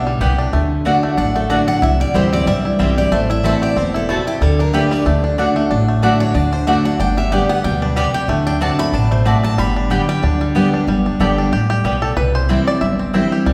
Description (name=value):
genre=bluegrass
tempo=186 BPM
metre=4/4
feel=swing 55% on 8ths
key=G major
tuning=A4 = 440 Hz
part: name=bluegrass banjo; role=melody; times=0.0-13.5 s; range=G3 to E5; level=-25 LUFS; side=equal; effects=none
part: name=picked steel-string acoustic guitar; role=melody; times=0.0-10.8 s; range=F#4 to B5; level=-25 LUFS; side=equal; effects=none
part: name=picked steel-string acoustic guitar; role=accompaniment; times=0.0-13.5 s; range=G2 to G4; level=-20 LUFS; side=equal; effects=none
part: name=upright bass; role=bass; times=0.0-13.5 s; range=E1 to D2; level=-22 LUFS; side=equal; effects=none
part: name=mandolin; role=stabs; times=0.2-13.2 s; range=A3 to A5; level=-25 LUFS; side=equal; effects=none
room=wet recital hall reverb, RT60 1.9 s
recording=recorded in a church or concert hall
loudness=-16 LUFS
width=mono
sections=0.5-10.9 A section; 10.9-13.5 A section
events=steel-string acoustic guitar solo 0.0-10.9; five-string banjo solo 10.9-13.5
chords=0.0 G; 0.5 D; 1.8 C; 3.1 Am; 4.4 Dsus4; 5.1 D; 7.0 G; 8.3 D7; 9.6 G; 12.2 C